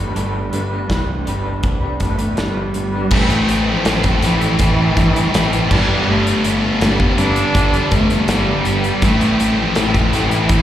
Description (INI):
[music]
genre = quiet-loud alternative rock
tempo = 81 BPM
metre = 4/4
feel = straight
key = A minor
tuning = A4 = 436 Hz
[part]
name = electric guitar through a small old amp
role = arpeggios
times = 0.0-3.1 s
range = G3 to B4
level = -24 LUFS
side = right 1 dB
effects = tremolo, slapback echo
[part]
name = growling picked electric bass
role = bass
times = 0.0-10.6 s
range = G1 to G2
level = -22 LUFS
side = equal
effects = overdrive
[part]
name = loose indie drum kit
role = drums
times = 0.2-10.6 s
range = crash cymbal, hi-hat, kick drum, snare drum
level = -20 LUFS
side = equal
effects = none
[part]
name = dark cello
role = melody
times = 1.9-10.6 s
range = E3 to D4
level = -19 LUFS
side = right 1 dB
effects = slapback echo
[part]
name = distorted electric guitar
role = riff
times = 3.1-10.6 s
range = G2 to A3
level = -23 LUFS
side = right 9 dB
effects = overdrive, slapback echo
[part]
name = high-gain distorted guitar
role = riff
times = 3.1-10.6 s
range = G2 to A4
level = -21 LUFS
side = equal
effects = distortion, slapback echo
[part]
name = thick fuzz guitar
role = riff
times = 3.1-10.6 s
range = G2 to E4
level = -21 LUFS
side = left 8 dB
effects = distortion, slapback echo
[sound]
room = little or no reverb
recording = live gig heard through the venue's PA, recital hall reverb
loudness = -14 LUFS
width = side -11 dB against mid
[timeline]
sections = 0.0-3.1 A section; 3.1-10.6 B section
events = none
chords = 0.0 Gadd9; 3.1 Am; 5.7 Gadd9; 9.0 Am